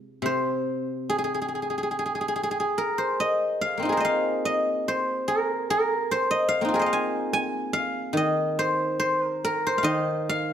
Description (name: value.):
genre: chinese traditional.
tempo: 72 BPM.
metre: 4/4.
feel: rubato.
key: C jue mode.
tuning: A4 = 441 Hz.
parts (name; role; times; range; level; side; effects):
guzheng; solo; 0.0-10.5 s; C3 to Ab5; -23 LUFS; equal; none.
room: light reverb.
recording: close, detailed microphones.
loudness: -23 LUFS.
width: side -9 dB against mid.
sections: 0.0-10.5 A section.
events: none.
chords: none.